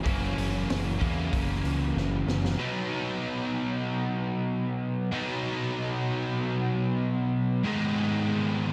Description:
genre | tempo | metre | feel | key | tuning
rock, shoegaze and dream pop | 95 BPM | 4/4 | straight | unclear | A4 = 442 Hz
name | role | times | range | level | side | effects
cranked stack guitar | riff | 0.0-8.7 s | F#2 to D#4 | -29 LUFS | equal | overdrive, analog chorus
growling picked electric bass | bass | 0.1-2.5 s | F#1 to E2 | -33 LUFS | equal | overdrive
raw garage drum kit | drums | 0.1-2.6 s | hi-hat, kick drum, snare drum | -35 LUFS | equal | none
room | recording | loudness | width
small room reverb | none | -29 LUFS | mono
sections
0.0-2.6 A section; 2.6-8.7 B section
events
drum fill 2.0-2.6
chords
0.0 F#7; 2.6 B; 7.6 G#m

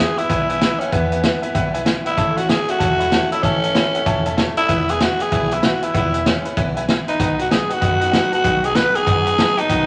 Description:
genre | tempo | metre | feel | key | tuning
rockabilly | 192 BPM | 4/4 | swing 62% on 8ths | E major | A4 = 441 Hz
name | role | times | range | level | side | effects
growling tenor saxophone | melody | 0.0-9.9 s | B3 to B4 | -21 LUFS | equal | none
bright upright piano | accompaniment | 0.0-9.8 s | B4 to B5 | -28 LUFS | equal | none
picked steel-string acoustic guitar | accompaniment | 0.0-9.9 s | E2 to F#4 | -30 LUFS | equal | none
upright bass | bass | 0.0-9.9 s | E1 to F#2 | -30 LUFS | equal | none
vintage drum kit | drums | 0.2-9.8 s | hi-hat, kick drum, snare drum | -23 LUFS | equal | none
room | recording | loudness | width
wet large studio reverb, RT60 1.4 s | none | -18 LUFS | mono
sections
0.0-9.9 A section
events
none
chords
0.0 E; 2.2 A; 4.7 E; 7.2 B

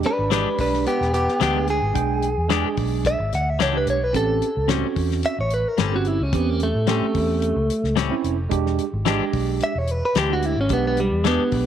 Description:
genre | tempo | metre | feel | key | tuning
straight-eighth soul blues | 110 BPM | 4/4 | straight | unclear | A4 = 439 Hz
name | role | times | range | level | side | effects
tine electric piano | accompaniment | 0.0-11.7 s | G#3 to G5 | -26 LUFS | right 11 dB | none
damped 70s drum kit | drums | 0.0-11.7 s | hi-hat, kick drum, snare drum | -27 LUFS | left 6 dB | none
direct-recorded clean electric guitar | melody | 0.1-11.7 s | G3 to F#5 | -22 LUFS | equal | none
vintage muted fingered electric bass | bass | 0.2-11.7 s | E1 to A2 | -24 LUFS | equal | none
clean electric guitar | stabs | 0.3-11.4 s | A2 to G4 | -27 LUFS | left 11 dB | none
room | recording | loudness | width
moderate spring reverb, RT60 2.4 s | 1960s-style stereo with parts hard left and right | -19 LUFS | side -9 dB against mid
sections
0.0-11.7 A section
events
clean electric guitar solo 0.0-11.7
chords
0.0 E7#9; 4.1 A7#9; 8.5 E7#9

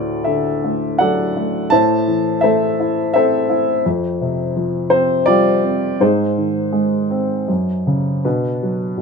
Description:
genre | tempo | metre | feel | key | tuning
classical, lyrical solo piano | 82 BPM | 3/4 | rubato | unclear | A4 = 440 Hz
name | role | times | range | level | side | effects
dark upright piano | solo | 0.0-9.0 s | D2 to A5 | -15 LUFS | left 1 dB | none
room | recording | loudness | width
light reverb | minimal, uncompressed stereo recording | -15 LUFS | side -5 dB against mid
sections
0.0-8.2 A section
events
none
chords
0.0 D; 1.7 Am; 3.9 Fsus2; 6.0 G#; 7.5 F#5; 8.2 Bm

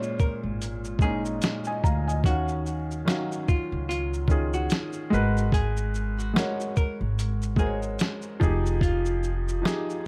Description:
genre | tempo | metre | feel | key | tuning
lo-fi hip hop | 73 BPM | 4/4 | swing 58% on 16ths | Bb minor | A4 = 440 Hz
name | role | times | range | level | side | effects
felt-muted upright piano | accompaniment | 0.0-10.1 s | Bb2 to Bb5 | -32 LUFS | equal | cassette tape, low-pass filter
lo-fi sampler-style drum kit | drums | 0.0-10.0 s | hi-hat, kick drum, shaker, snare drum | -28 LUFS | equal | overdrive
hollow-body jazz guitar | melody | 0.2-10.1 s | F4 to Bb4 | -37 LUFS | equal | low-pass filter, tape echo
upright bass | bass | 0.4-9.6 s | F1 to Eb2 | -30 LUFS | equal | none
room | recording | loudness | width
light reverb | vinyl crackle | -26 LUFS | mono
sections
0.0-10.1 A section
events
none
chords
0.0 Bbm9; 2.2 Ebm9; 5.1 Abm9; 8.4 Fm9

